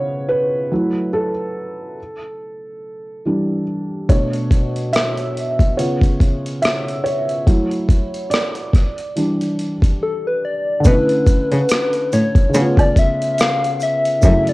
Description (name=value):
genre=lo-fi hip hop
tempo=71 BPM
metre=4/4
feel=swing 57% on 16ths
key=B minor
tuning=A4 = 440 Hz
part: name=felt-muted upright piano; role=accompaniment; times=0.0-14.5 s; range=B2 to E5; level=-20 LUFS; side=right 1 dB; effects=cassette tape
part: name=boom bap sampler-style drum kit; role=drums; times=4.1-14.5 s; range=hi-hat, kick drum, rim click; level=-15 LUFS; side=equal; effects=cassette tape
part: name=soft struck synth lead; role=melody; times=10.0-14.5 s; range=A4 to E#5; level=-18 LUFS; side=left 2 dB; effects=chorus, tremolo, cassette tape
part: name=maracas and woodblock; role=percussion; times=10.8-14.4 s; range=none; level=-28 LUFS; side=right 4 dB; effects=none
part: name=rich cello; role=bass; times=10.9-14.3 s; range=F#2 to C#3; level=-17 LUFS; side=equal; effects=none
room=moderate studio reverb, RT60 0.6 s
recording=home recording on cassette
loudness=-15 LUFS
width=side -20 dB against mid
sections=0.0-10.8 A section; 10.8-14.5 B section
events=felt piano solo 0.0-10.8; silent gap 10.0-10.8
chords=0.0 C#7; 0.7 F#m7; 2.0 Em7; 4.1 Bm11; 5.8 C#7#9; 7.5 F#m7; 8.7 Em7; 10.8 Bm11; 12.5 C#aug7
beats=| 0.71 1.55 2.40 3.24 | 4.09 4.93 5.78 6.62 | 7.47 8.31 9.16 10.00 | 10.85 11.69 12.54 13.38 | 14.23